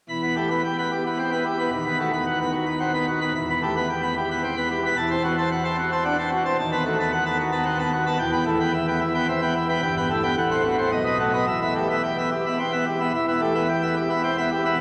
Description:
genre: classical, organ toccata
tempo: 111 BPM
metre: 3/4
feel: straight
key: E minor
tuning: A4 = 440 Hz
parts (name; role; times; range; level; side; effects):
- pipe organ, plenum; solo; 0.1-14.8 s; D#1 to B5; -23 LUFS; equal; none
room: wet cathedral reverb, RT60 4.6 s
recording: none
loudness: -23 LUFS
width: mono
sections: 0.1-13.1 A section; 13.1-14.8 A section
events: none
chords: 0.1 Em; 1.7 B/D#; 3.3 Em; 5.0 F#m7b5/E; 6.6 B7/D#; 8.2 Em; 9.8 Em/G; 10.4 F#dim/A; 10.9 B; 11.5 Em

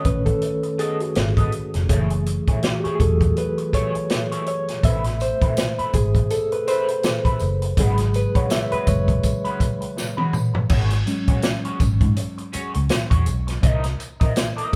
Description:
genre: lush 1970s-style soul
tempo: 82 BPM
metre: 4/4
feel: swing 58% on 16ths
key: E major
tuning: A4 = 440 Hz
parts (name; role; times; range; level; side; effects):
- reed electric piano; accompaniment; 0.0-14.8 s; B2 to E5; -27 LUFS; equal; overdrive, fast tremolo
- electric guitar through a small old amp; riff; 0.0-14.8 s; G#3 to D#5; -33 LUFS; equal; wah
- vintage drum kit; drums; 0.0-14.8 s; crash cymbal, hi-hat, kick drum, snare drum, toms; -24 LUFS; equal; none
- vintage muted fingered electric bass; bass; 0.1-13.9 s; E1 to G#2; -25 LUFS; equal; none
- tambourine; percussion; 5.2-14.8 s; none; -43 LUFS; equal; none
room: moderate large studio reverb, RT60 1.3 s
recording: band playing live in one room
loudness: -21 LUFS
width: mono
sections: 0.0-10.7 A section; 10.7-14.8 B section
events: reed electric piano solo 0.0-10.7, 10.7-14.8; drum fill 10.0-10.7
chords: 0.0 B7; 1.9 F#m9; 4.8 Amadd9; 7.8 F#9sus4; 10.7 E69/G# (rootless); 13.6 C7#9

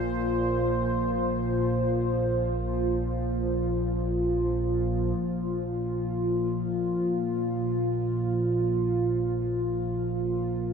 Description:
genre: dark ambient drone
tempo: free time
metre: none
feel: none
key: unclear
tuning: A4 = 440 Hz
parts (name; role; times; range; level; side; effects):
- sweeping resonant pad; sustained chords; 0.0-10.7 s; Bb2 to C5; -26 LUFS; equal; chorus, phaser
- analog drone; drone; 0.0-10.7 s; Bb1 to Bb2; -33 LUFS; equal; chorus
room: wet huge ambient reverb, RT60 8.1 s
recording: none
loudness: -25 LUFS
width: side -6 dB against mid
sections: 0.0-5.2 A section; 5.2-10.7 B section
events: filter sweep on synth drone 0.0-5.2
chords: 0.0 Bb5

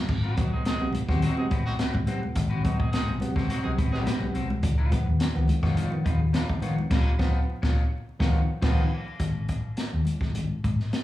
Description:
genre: funk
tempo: 105 BPM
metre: 4/4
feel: straight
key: unclear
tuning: A4 = 445 Hz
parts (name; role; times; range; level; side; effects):
- hollow-body short-scale fingered electric bass; bass; 0.0-10.8 s; Ab1 to Ab2; -26 LUFS; equal; none
- electric guitar at the edge of break-up; accompaniment; 0.1-8.8 s; C4 to Db5; -36 LUFS; left 5 dB; slapback echo
- barky tine electric piano; stabs; 0.1-8.8 s; Ab2 to B3; -30 LUFS; right 1 dB; overdrive, slapback echo
- vintage drum kit; drums; 0.1-11.0 s; crash cymbal, hi-hat, kick drum, snare drum; -28 LUFS; left 1 dB; none
- congas; percussion; 0.1-11.0 s; none; -35 LUFS; right 1 dB; slapback echo
- clear horn section; second line; 0.4-4.0 s; Gb3 to Ab4; -34 LUFS; right 1 dB; slapback echo
room: light reverb, studio reverb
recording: live gig heard through the venue's PA, club reverb, vinyl crackle, small room ambience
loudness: -23 LUFS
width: side -15 dB against mid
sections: 0.0-9.2 A section; 9.2-11.0 B section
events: band accent 6.9-9.2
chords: 0.1 Ab7#9; 4.6 Db9; 9.2 N.C.

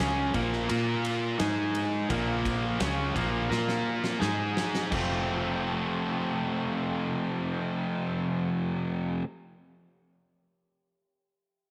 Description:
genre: classic rock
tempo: 85 BPM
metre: 4/4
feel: straight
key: F major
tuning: A4 = 440 Hz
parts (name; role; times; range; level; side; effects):
- bright tonewheel organ; sustained chords; 0.0-8.5 s; Ab3 to F5; -44 LUFS; equal; none
- biting overdriven guitar; riff; 0.0-9.2 s; F2 to Bb4; -33 LUFS; equal; none
- tight distorted guitar; riff; 0.0-9.2 s; F2 to Bb4; -35 LUFS; equal; distortion
- fingered electric bass; bass; 0.0-9.2 s; F1 to Bb2; -37 LUFS; equal; none
- huge arena drum kit; drums; 0.0-5.1 s; crash cymbal, kick drum, ride cymbal, snare drum; -37 LUFS; equal; none
room: light reverb, small room ambience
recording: none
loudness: -29 LUFS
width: mono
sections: 0.0-4.9 A section; 4.9-7.7 B section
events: drum fill 3.5-4.9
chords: 0.0 Bb5; 1.4 Ab5; 2.1 Bb5; 4.2 Ab5; 4.9 F

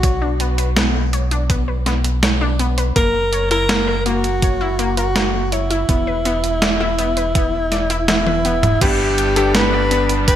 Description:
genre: synthwave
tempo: 82 BPM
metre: 4/4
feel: straight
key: unclear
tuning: A4 = 441 Hz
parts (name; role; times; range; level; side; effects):
- breathy tenor saxophone; melody; 0.0-10.4 s; E4 to B4; -20 LUFS; equal; digital delay
- wide unison pluck; arpeggios; 0.0-10.4 s; A#3 to G5; -24 LUFS; left 3 dB; digital delay
- round analog bass; bass; 0.0-10.4 s; E1 to B1; -21 LUFS; equal; sidechain pumping
- clean 12-bit digital drum machine; drums; 0.0-10.4 s; crash cymbal, hi-hat, snare drum, toms; -21 LUFS; right 1 dB; gated reverb
- electronic kick drum; drums; 0.0-10.4 s; none; -19 LUFS; equal; none
- lush unison pad; sustained chords; 8.8-10.4 s; G3 to D4; -23 LUFS; equal; chorus, sidechain pumping
- bright concert grand piano; stabs; 8.8-10.4 s; G2 to A4; -23 LUFS; right 1 dB; none
room: moderate plate reverb, RT60 2.6 s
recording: bright 1980s-style digital production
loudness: -15 LUFS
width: side -10 dB against mid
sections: 0.0-8.8 A section; 8.8-10.4 B section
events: drum fill 8.1-8.8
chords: 0.0 Bmadd9; 3.0 F#7; 5.9 E5; 8.8 G

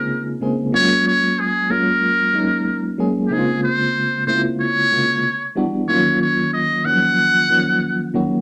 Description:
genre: R&B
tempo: 93 BPM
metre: 4/4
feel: swing 53% on 16ths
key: Bb minor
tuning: A4 = 444 Hz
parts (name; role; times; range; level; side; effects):
- trumpet with metal mute; melody; 0.0-8.1 s; G4 to Gb5; -20 LUFS; equal; none
- FM electric piano with tremolo; accompaniment; 0.0-8.4 s; C3 to Ab4; -22 LUFS; equal; none
room: wet club reverb, RT60 0.6 s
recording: none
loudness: -18 LUFS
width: mono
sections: 0.0-8.4 A section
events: none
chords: 0.0 Bbm9; 0.7 Gbmaj9; 3.3 Bbm9; 5.2 Em9; 5.9 Ebm9

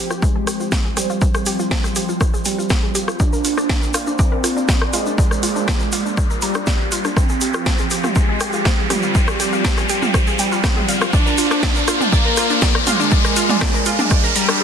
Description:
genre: melodic techno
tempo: 121 BPM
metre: 4/4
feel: straight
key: F dorian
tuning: A4 = 439 Hz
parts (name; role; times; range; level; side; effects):
- resonant sweep polysynth; melody; 0.0-14.6 s; G3 to D4; -23 LUFS; right 2 dB; chorus, sidechain pumping, dub echo
- lush unison pad; sustained chords; 0.0-14.6 s; F3 to D5; -28 LUFS; right 1 dB; chorus, phaser, sidechain pumping
- analog pluck; arpeggios; 0.0-14.6 s; D4 to Bb5; -24 LUFS; left 1 dB; chorus, cassette tape, sidechain pumping, dub echo
- round analog bass; bass; 0.0-14.6 s; none; barely audible; none; none
- riser; sound effects; 1.9-14.6 s; none; -23 LUFS; equal; none
- techno drum kit; drums; 0.1-14.6 s; hi-hat, rim click, snare drum, toms; -23 LUFS; equal; soft clipping on snare
- egg shaker; percussion; 0.1-14.6 s; none; -28 LUFS; left 3 dB; none
- electronic kick drum; drums; 0.2-14.2 s; none; -18 LUFS; equal; none
room: moderate digital room reverb, RT60 1.2 s, digital ambience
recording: dense, heavily limited modern master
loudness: -15 LUFS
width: side -7 dB against mid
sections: 0.0-14.6 A section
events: build-up 0.0-14.6; filter sweep on synth arpeggio sound 0.0-14.6; filter sweep on analog polysynth 0.0-14.6; riser 1.9-14.6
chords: 0.0 Fmadd9; 3.2 Bb; 7.2 Fmadd9; 11.1 Bb

